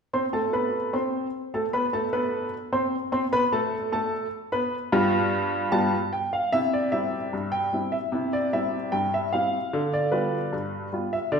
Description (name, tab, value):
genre	ragtime piano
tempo	75 BPM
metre	2/4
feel	straight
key	C major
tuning	A4 = 440 Hz
part	clear upright piano	solo	0.1-11.4 s	G2 to C6	-23 LUFS	equal	none
room	wet recital hall reverb, RT60 1.3 s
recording	recorded in a church or concert hall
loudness	-23 LUFS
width	side -6 dB against mid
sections	0.1-6.5 A section; 6.5-11.4 B section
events	none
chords	0.1 Amadd9; 3.3 G7; 6.5 C; 9.7 G7